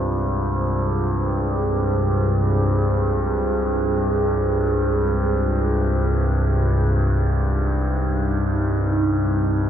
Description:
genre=dark ambient drone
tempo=free time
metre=none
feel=none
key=unclear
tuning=A4 = 440 Hz
part: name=deep dark ambient pad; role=sustained chords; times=0.0-9.7 s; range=Eb4 to C5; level=-24 LUFS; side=right 2 dB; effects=chorus, built-in reverb
part: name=overtone-sweeping drone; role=drone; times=0.0-9.7 s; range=C2 to G2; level=-20 LUFS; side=equal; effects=chorus, built-in reverb
room=wet cathedral reverb, RT60 7.4 s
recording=dark, warm production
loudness=-18 LUFS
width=side -9 dB against mid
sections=0.0-9.7 A section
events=none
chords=0.0 Ab; 6.7 Cm

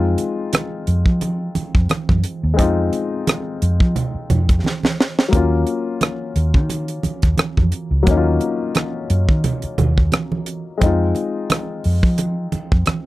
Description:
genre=lush 1970s-style soul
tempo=88 BPM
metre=4/4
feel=swing 54% on 16ths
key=unclear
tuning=A4 = 440 Hz
part: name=dark grand piano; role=accompaniment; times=0.0-13.1 s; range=Gb3 to F4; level=-23 LUFS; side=left 5 dB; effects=none
part: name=vintage muted fingered electric bass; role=bass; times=0.0-12.9 s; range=Db2 to F3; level=-18 LUFS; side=equal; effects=none
part: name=tight funk drum kit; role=drums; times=0.2-13.0 s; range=hi-hat, kick drum, rim click, snare drum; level=-17 LUFS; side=equal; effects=none
part: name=congas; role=percussion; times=0.2-13.0 s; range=none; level=-25 LUFS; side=right 4 dB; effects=none
room=little or no reverb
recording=dry, close 1970s-style studio recording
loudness=-16 LUFS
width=side -17 dB against mid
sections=0.0-13.1 A section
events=drum fill 4.6-5.3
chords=0.0 Fm7; 5.3 Ebm7; 10.8 Fm7

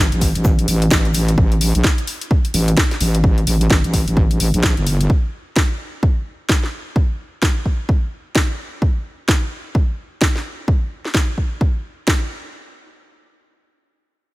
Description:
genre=bass house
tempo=129 BPM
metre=4/4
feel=swing 60% on 16ths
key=unclear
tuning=A4 = 438 Hz
part: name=wobble bass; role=bass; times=0.0-5.1 s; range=G1 to Bb1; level=-16 LUFS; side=equal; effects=chorus, tube saturation, sidechain pumping
part: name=house drum kit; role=drums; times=0.1-12.2 s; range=hi-hat, snare drum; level=-21 LUFS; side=equal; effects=overdrive, studio reverb
part: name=electronic kick drum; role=drums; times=0.2-12.2 s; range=none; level=-16 LUFS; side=equal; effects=overdrive, studio reverb
part: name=shaker and snare drum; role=drums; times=0.2-1.3 s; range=none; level=-31 LUFS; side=left 1 dB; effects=none
room=studio ambience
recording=none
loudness=-16 LUFS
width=side -20 dB against mid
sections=0.0-12.5 A section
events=none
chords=none

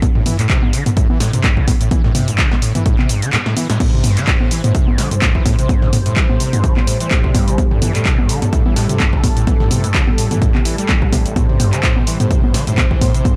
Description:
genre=acid house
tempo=127 BPM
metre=4/4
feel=swing 55% on 16ths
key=A minor pentatonic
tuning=A4 = 440 Hz
part: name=overdriven acid bass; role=riff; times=0.0-13.4 s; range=A1 to G3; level=-22 LUFS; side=equal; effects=distortion, ensemble chorus, sidechain pumping, digital delay
part: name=electronic kick drum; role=drums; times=0.0-13.4 s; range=none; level=-18 LUFS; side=equal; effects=none
part: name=punchy analog drum machine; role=drums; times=0.0-13.4 s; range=cabasa, congas, crash cymbal, handclaps, hi-hat, snare drum, toms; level=-21 LUFS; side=equal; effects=none
part: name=warm analog pad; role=sustained chords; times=3.8-13.4 s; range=A2 to C5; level=-26 LUFS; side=equal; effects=chorus, sidechain pumping
room=light reverb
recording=dark, warm production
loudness=-15 LUFS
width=mono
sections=0.0-13.4 A section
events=kick drops out 3.3-3.8; drum fill 3.3-3.8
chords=0.0 Am7

